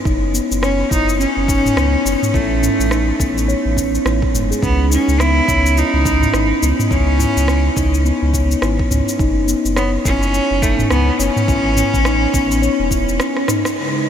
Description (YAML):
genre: organic downtempo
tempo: 105 BPM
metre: 4/4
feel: swing 60% on 16ths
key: unclear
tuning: A4 = 441 Hz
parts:
  - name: steel tongue drum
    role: arpeggios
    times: 0.1-13.8 s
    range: G#3 to C#5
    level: -19 LUFS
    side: left 1 dB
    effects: tape echo
  - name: warm sub bass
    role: bass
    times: 0.1-13.2 s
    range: E1 to C#2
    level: -18 LUFS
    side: equal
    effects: tube saturation, sidechain pumping
  - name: afro-pop drum kit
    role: drums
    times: 0.1-13.7 s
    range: cabasa, rim click, toms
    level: -23 LUFS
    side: equal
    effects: small room reverb
  - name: electronic kick drum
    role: drums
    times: 0.1-13.0 s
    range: none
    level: -20 LUFS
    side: equal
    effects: small room reverb
  - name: bright cello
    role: melody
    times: 0.6-13.4 s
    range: A3 to E4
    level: -20 LUFS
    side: equal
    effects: analog delay
  - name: airy breathy pad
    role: sustained chords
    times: 13.8-14.1 s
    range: C#3 to E4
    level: -21 LUFS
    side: right 4 dB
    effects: chorus, phaser, sidechain pumping
room: moderate huge ambient reverb, RT60 8.4 s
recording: dreamy mix soaked in reverb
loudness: -14 LUFS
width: side -9 dB against mid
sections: 0.0-13.8 A section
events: drum fill 13.3-13.8; band accent 13.6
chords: 0.1 F#sus4; 2.3 Aadd9; 4.6 C#7sus2; 9.2 F#sus4; 11.5 A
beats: | 0.05 0.62 1.20 1.77 | 2.34 2.91 3.48 4.05 | 4.62 5.20 5.77 6.34 | 6.91 7.48 8.05 8.62 | 9.20 9.77 10.34 10.91 | 11.48 12.05 12.62 13.20 | 13.77